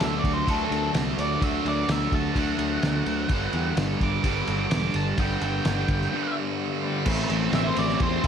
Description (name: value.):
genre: classic rock.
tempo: 128 BPM.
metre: 4/4.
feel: straight.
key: unclear.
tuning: A4 = 438 Hz.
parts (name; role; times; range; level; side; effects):
octave-fuzz lead guitar; melody; 0.0-8.2 s; A4 to D6; -30 LUFS; right 1 dB; distortion, digital delay.
bright tonewheel organ; sustained chords; 0.0-8.3 s; F#3 to E5; -40 LUFS; left 1 dB; none.
distorted electric guitar; riff; 0.0-8.3 s; G2 to E4; -30 LUFS; right 9 dB; overdrive.
overdriven electric guitar; riff; 0.0-8.3 s; G2 to E4; -29 LUFS; left 5 dB; none.
picked electric bass; bass; 0.0-8.3 s; E1 to E2; -29 LUFS; equal; none.
cloth-damped thuddy drum kit; drums; 0.0-8.3 s; crash cymbal, kick drum, ride cymbal, snare drum; -28 LUFS; equal; none.
room: light reverb.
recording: none.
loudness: -22 LUFS.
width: side -8 dB against mid.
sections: 0.0-7.1 A section; 7.1-8.3 B section.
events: lead electric guitar solo 0.0-7.1; break 6.1-7.1.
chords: 0.0 Dadd9; 3.3 G; 7.1 Am.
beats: 0.01 0.48 0.95 | 1.42 1.89 2.36 2.83 | 3.30 3.77 4.24 4.71 | 5.18 5.66 6.12 6.59 | 7.07 7.54 8.01.